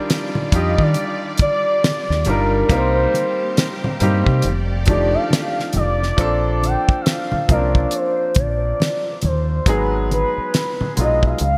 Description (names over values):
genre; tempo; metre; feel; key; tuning
R&B, neo-soul; 69 BPM; 4/4; swing 61% on 16ths; Bb major; A4 = 438 Hz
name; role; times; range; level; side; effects
warm upright piano; accompaniment; 0.0-11.4 s; F3 to F5; -26 LUFS; equal; none
warm symphonic string section; sustained chords; 0.0-6.2 s; Eb3 to D5; -33 LUFS; equal; none
damped 70s drum kit; drums; 0.1-11.6 s; hi-hat, kick drum, snare drum; -21 LUFS; equal; gated reverb
congas; percussion; 0.4-11.2 s; none; -28 LUFS; equal; none
deep dub fingered electric bass; bass; 0.5-11.6 s; F1 to Eb3; -22 LUFS; equal; none
gliding portamento lead; melody; 0.6-11.6 s; Bb4 to G5; -24 LUFS; equal; chorus
room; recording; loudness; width
light reverb; bright 1980s-style digital production; -18 LUFS; mono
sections
0.0-6.2 A section; 6.2-11.6 B section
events
soft synth lead solo 0.0-6.2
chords
0.0 Ebmaj9; 2.7 Cm7; 4.4 F13; 6.2 Bbmaj9; 9.7 Abm7